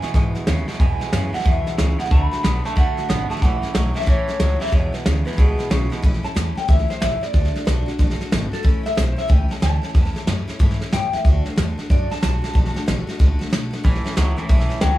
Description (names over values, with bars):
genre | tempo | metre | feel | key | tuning
rockabilly | 184 BPM | 4/4 | swing 64% on 8ths | A major | A4 = 440 Hz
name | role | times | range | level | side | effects
electric guitar through a small old amp | melody | 0.0-15.0 s | G#4 to B5 | -26 LUFS | left 1 dB | spring reverb, analog delay
picked steel-string acoustic guitar | accompaniment | 0.0-15.0 s | E2 to F#4 | -30 LUFS | left 3 dB | plate reverb
twangy electric guitar | riff | 0.0-6.0, 13.8-15.0 s | E2 to B3 | -27 LUFS | right 3 dB | spring reverb
upright bass | bass | 0.0-15.0 s | G#1 to A2 | -22 LUFS | equal | none
soft brush drum kit | drums | 0.0-14.9 s | hi-hat, kick drum, snare drum | -20 LUFS | equal | none
room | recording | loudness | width
little or no reverb | none | -17 LUFS | side -15 dB against mid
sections
0.0-6.0 A section; 6.0-15.0 B section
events
clean electric guitar solo 6.0-15.0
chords
0.0 E; 2.1 D; 3.4 A; 4.7 E; 6.0 A; 7.3 D; 8.6 A; 11.3 D; 13.8 A